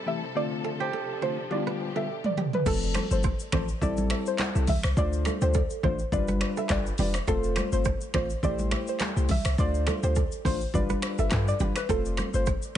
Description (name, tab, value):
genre	afrobeats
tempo	104 BPM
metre	4/4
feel	swing 55% on 16ths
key	unclear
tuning	A4 = 442 Hz
part	warm studio string section	sustained chords	0.0-2.6 s	B2 to A4	-38 LUFS	left 2 dB	none
part	soft round pluck	melody	0.1-12.6 s	A4 to E5	-32 LUFS	equal	chorus, ping-pong delay
part	soft electric-piano-like synth keys	accompaniment	0.1-12.8 s	D3 to C5	-33 LUFS	left 4 dB	chorus
part	kora	riff	0.6-12.6 s	G4 to E5	-35 LUFS	right 10 dB	ping-pong delay
part	deep house drum kit	drums	1.5-12.8 s	crash cymbal, finger snaps, handclaps, hi-hat, kick drum, rim click, shaker, toms	-30 LUFS	equal	none
part	clean 808-style bass	bass	2.7-12.5 s	F1 to G2	-28 LUFS	equal	none
part	congas	percussion	3.0-12.3 s	none	-34 LUFS	right 2 dB	none
room	little or no reverb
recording	nothing above 10.3 kHz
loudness	-24 LUFS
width	side -11 dB against mid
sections	0.0-2.7 A section; 2.7-12.8 B section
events	drum fill 1.5-2.7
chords	0.4 Dm7; 1.5 G7; 2.7 F; 3.8 Am7; 5.0 Dm7; 6.1 G7; 7.3 F; 8.4 Am7; 9.6 Dm7; 10.7 G7; 11.9 F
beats	| 0.35 0.93 1.51 2.08 | 2.66 3.24 3.81 4.39 | 4.97 5.55 6.12 6.70 | 7.28 7.85 8.43 9.01 | 9.59 10.16 10.74 11.31 | 11.89 12.47